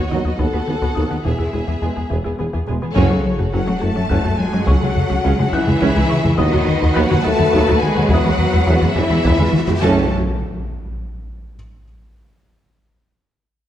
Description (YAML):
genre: cinematic, hybrid orchestral and electronic film score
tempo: 70 BPM (dotted quarters)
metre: 6/8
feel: straight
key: F# dorian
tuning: A4 = 439 Hz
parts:
  - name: clear symphonic violin section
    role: melody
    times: 0.0-10.1 s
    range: C#5 to A5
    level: -26 LUFS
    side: left 3 dB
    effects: none
  - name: warm symphonic violin section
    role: second line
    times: 0.0-10.1 s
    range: E4 to B4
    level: -25 LUFS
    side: left 2 dB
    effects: none
  - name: rich symphonic viola section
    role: accompaniment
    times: 0.0-10.1 s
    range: D#3 to G#4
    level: -25 LUFS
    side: right 2 dB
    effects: none
  - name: mallet-like synth pluck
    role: arpeggios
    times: 0.0-9.8 s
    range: C#3 to B4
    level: -29 LUFS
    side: left 3 dB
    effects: none
  - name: rubbery square bass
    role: riff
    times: 0.0-9.8 s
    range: C#2 to F#3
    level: -21 LUFS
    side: left 2 dB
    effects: none
  - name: warm symphonic cello section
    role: bass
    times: 0.0-10.1 s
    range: D#2 to A3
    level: -25 LUFS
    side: right 2 dB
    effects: none
  - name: felt-muted upright piano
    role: texture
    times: 0.0-9.8 s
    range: C#5 to F#6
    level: -31 LUFS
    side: left 1 dB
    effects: digital delay
  - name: bright trombone section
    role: sustained chords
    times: 0.1-2.8 s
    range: B2 to G#3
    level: -30 LUFS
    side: right 4 dB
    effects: none
  - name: mellow French horn section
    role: sustained chords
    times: 0.1-10.1 s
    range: C#3 to E4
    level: -23 LUFS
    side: left 4 dB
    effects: none
  - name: clear tuba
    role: bass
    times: 0.1-10.1 s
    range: E1 to D#2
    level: -26 LUFS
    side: right 3 dB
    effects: none
  - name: rich studio double bass section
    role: bass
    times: 0.1-10.1 s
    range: E1 to F#2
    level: -24 LUFS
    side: right 3 dB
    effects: none
  - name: taiko ensemble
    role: drums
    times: 0.4-9.9 s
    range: none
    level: -23 LUFS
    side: equal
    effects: none
  - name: sub drop, riser and impact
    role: sound effects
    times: 3.0-11.5 s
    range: none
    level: -27 LUFS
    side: equal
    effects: none
room: wet recital hall reverb, RT60 1.4 s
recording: dark, warm production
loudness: -14 LUFS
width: side -11 dB against mid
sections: 0.0-3.0 A section; 3.0-9.8 B section; 9.8-11.5 C section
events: band accent 3.0-3.5; impact 3.0-4.7, 9.8-11.5; drum fill 9.4-9.8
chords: 0.0 B/D#; 1.2 E; 3.0 F#m; 4.7 C#m; 6.4 B/D#; 8.1 E; 9.8 F#m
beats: 0.39 | 1.25 2.11 | 2.96 3.82 | 4.68 5.53 | 6.39 7.25 | 8.11 8.96 | 9.82 10.68